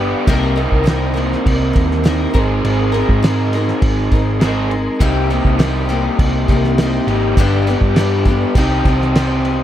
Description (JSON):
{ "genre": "folk rock and heartland rock", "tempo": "101 BPM", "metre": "4/4", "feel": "straight", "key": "C minor", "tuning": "A4 = 440 Hz", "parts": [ { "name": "picked twelve-string acoustic guitar", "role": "accompaniment", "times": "0.0-9.6 s", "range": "G2 to B4", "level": "-20 LUFS", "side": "left 4 dB", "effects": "none" }, { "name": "tonewheel organ", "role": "sustained chords", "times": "0.0-9.6 s", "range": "Bb4 to Eb6", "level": "-30 LUFS", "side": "equal", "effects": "none" }, { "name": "raw garage guitar", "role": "riff", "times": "0.0-9.6 s", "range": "G2 to Ab4", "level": "-20 LUFS", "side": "right 2 dB", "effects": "overdrive" }, { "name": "hollow-body short-scale picked electric bass", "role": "bass", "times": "0.0-9.6 s", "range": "G1 to Ab2", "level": "-18 LUFS", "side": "equal", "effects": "none" }, { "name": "cloth-damped thuddy drum kit", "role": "drums", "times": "0.3-9.6 s", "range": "crash cymbal, kick drum, snare drum", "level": "-18 LUFS", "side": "equal", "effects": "none" } ], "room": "small room ambience", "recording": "none", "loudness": "-13 LUFS", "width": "side -11 dB against mid", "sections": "0.0-9.6 A section", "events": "none", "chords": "0.3 Cm7; 2.3 Abadd9; 5.0 Cm7; 7.4 G; 8.6 Cm" }